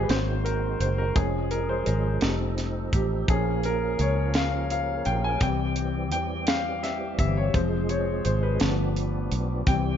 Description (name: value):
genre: slow gospel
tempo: 56 BPM (dotted quarters)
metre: 6/8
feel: straight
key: F minor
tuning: A4 = 440 Hz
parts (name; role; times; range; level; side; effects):
- clear upright piano; accompaniment; 0.0-10.0 s; E3 to Ab5; -28 LUFS; left 3 dB; none
- tonewheel organ; sustained chords; 0.0-10.0 s; C3 to Bb4; -34 LUFS; right 3 dB; fast rotary speaker, chorus vibrato
- fingered electric bass; bass; 0.0-10.0 s; F1 to E2; -27 LUFS; equal; none
- tight funk drum kit; drums; 0.1-9.8 s; hi-hat, kick drum, snare drum; -27 LUFS; right 1 dB; none
room: little or no reverb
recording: dark, warm production, nothing above 7.5 kHz, faint mains hum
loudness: -23 LUFS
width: side -9 dB against mid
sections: 0.0-10.0 A section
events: upright piano solo 0.0-10.0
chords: 0.1 Ab7; 1.2 Db/F; 2.2 F7; 3.3 Bbm; 5.4 C; 7.5 Fm; 8.6 G7